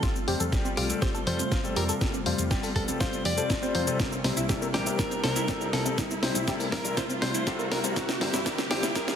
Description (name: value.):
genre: progressive house.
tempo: 121 BPM.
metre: 4/4.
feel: straight.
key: unclear.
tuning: A4 = 442 Hz.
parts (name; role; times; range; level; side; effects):
airy breathy pad; sustained chords; 0.0-9.2 s; C3 to F4; -35 LUFS; equal; chorus, sidechain pumping.
tight sequenced synth; arpeggios; 0.0-9.1 s; C4 to Bb4; -36 LUFS; equal; chorus, sidechain pumping, tape echo.
warm grand piano; stabs; 0.0-9.1 s; C3 to C5; -32 LUFS; left 4 dB; sidechain pumping, tape echo.
electronic kick drum; drums; 0.0-9.1 s; none; -31 LUFS; equal; none.
house drum kit; drums; 0.0-9.2 s; hi-hat, shaker, snare drum; -30 LUFS; equal; sidechain pumping on hats, sidechain pumping on perc.
riser; sound effects; 0.2-9.2 s; none; -38 LUFS; right 2 dB; none.
plucky analog bass; bass; 0.3-8.9 s; F1 to F2; -33 LUFS; equal; sidechain pumping.
direct-recorded clean electric guitar; melody; 0.8-9.2 s; G4 to D5; -34 LUFS; equal; vintage 12-bit sampler grit, sidechain pumping, dub echo.
room: moderate recital hall reverb, RT60 1.4 s, digital ambience.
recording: dense, heavily limited modern master, high-pass filter.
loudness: -25 LUFS.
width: side -8 dB against mid.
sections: 0.0-9.2 A section.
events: build-up 0.0-9.2; drum fill 0.0-9.2; riser 0.2-9.2.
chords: 0.0 Fadd9; 4.0 C7; 8.0 Gm7.